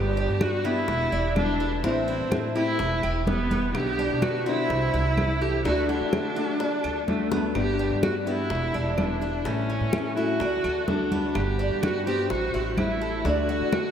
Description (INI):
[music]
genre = latin, Cuban son and guajira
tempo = 126 BPM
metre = 4/4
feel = straight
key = G major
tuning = A4 = 440 Hz
[part]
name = rich viola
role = melody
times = 0.0-13.9 s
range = A3 to G4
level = -27 LUFS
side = right 1 dB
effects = tape echo
[part]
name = nylon-string guitar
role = accompaniment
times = 0.0-13.9 s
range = B2 to G4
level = -30 LUFS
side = left 3 dB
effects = none
[part]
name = upright bass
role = bass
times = 0.0-13.9 s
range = E1 to D3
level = -30 LUFS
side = right 1 dB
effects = none
[part]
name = Cuban tres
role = arpeggios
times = 0.2-13.9 s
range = A3 to D5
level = -32 LUFS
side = right 1 dB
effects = none
[part]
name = congas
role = percussion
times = 0.2-13.9 s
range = none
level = -33 LUFS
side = equal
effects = none
[part]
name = bongos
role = percussion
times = 0.4-13.9 s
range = none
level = -36 LUFS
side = left 5 dB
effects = none
[part]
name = claves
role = percussion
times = 0.4-13.9 s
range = none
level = -44 LUFS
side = right 5 dB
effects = none
[sound]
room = wet cathedral reverb, RT60 5.5 s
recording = in a vast, echoing space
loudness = -23 LUFS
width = side -8 dB against mid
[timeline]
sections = 0.0-13.9 A section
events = drum fill 7.3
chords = 0.0 G; 0.9 E7; 1.8 Am; 2.8 Em; 3.7 Bm; 4.7 C; 5.7 D; 7.6 G; 8.5 E7; 9.5 A; 10.4 D; 11.4 G; 12.3 Am; 13.3 D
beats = 0.41 0.89 1.36 | 1.84 2.32 2.79 3.27 | 3.75 4.22 4.70 5.17 | 5.65 6.13 6.60 7.08 | 7.55 8.03 8.50 8.98 | 9.46 9.93 10.40 10.88 | 11.36 11.83 12.30 12.78 | 13.25 13.73